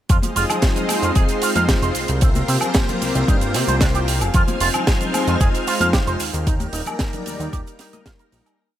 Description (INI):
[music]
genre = nu-disco, nu disco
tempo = 113 BPM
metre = 4/4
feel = straight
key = F dorian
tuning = A4 = 441 Hz
[part]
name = warm analog pad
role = accompaniment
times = 0.3-8.6 s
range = G3 to D5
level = -25 LUFS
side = left 1 dB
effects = chorus, sidechain pumping, digital delay
[part]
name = string machine, full ensemble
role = sustained chords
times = 0.1-8.6 s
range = Ab4 to F6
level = -28 LUFS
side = equal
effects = ensemble chorus, sidechain pumping
[part]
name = electric guitar with an envelope filter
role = riff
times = 0.1-8.2 s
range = C3 to F5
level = -25 LUFS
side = right 4 dB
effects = lush chorus, vintage 12-bit sampler grit, digital delay
[part]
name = fat analog bass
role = bass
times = 0.1-8.4 s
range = Eb1 to C3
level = -22 LUFS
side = equal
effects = none
[part]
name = electronic kick drum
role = drums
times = 0.1-8.2 s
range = none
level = -18 LUFS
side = equal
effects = none
[part]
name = tight funk drum kit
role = drums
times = 0.1-8.6 s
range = cabasa, hi-hat, snare drum, woodblock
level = -24 LUFS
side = right 1 dB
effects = none
[part]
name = congas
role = percussion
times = 0.2-8.0 s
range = none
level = -30 LUFS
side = left 4 dB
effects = none
[sound]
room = small room reverb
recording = none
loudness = -16 LUFS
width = side -12 dB against mid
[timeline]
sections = 0.1-8.6 drop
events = drop 0.1-8.6; fade-out 5.8-8.6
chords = 0.1 Fm7; 2.0 C7sus4; 4.1 Fm7; 6.2 Ebmaj7